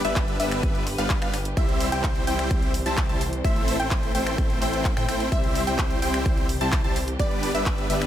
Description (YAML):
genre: EDM, festival progressive house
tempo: 128 BPM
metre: 4/4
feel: straight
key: C major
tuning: A4 = 441 Hz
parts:
  - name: dark studio string section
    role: sustained chords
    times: 0.0-8.1 s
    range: D3 to C5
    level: -34 LUFS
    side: left 1 dB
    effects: sidechain pumping
  - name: wide unison pluck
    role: arpeggios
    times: 0.0-8.1 s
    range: D5 to A5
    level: -32 LUFS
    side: left 1 dB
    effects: sidechain pumping, dub echo
  - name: big supersaw lead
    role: riff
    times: 0.0-8.1 s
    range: G3 to A5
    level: -27 LUFS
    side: equal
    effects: sidechain pumping, dub echo
  - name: wide detuned saw bass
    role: bass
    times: 0.0-8.1 s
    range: G1 to A2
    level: -31 LUFS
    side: equal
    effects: chorus, sidechain pumping
  - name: big-room dance drum kit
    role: drums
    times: 0.0-8.1 s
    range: finger snaps, handclaps, hi-hat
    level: -32 LUFS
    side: equal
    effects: studio reverb
  - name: electronic kick drum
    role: drums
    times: 0.2-7.8 s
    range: none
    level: -25 LUFS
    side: equal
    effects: studio reverb
room: little or no reverb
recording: none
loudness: -21 LUFS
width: side -11 dB against mid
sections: 0.0-8.1 A section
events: none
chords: 0.0 G; 1.6 C; 3.4 Am; 5.3 C; 7.2 G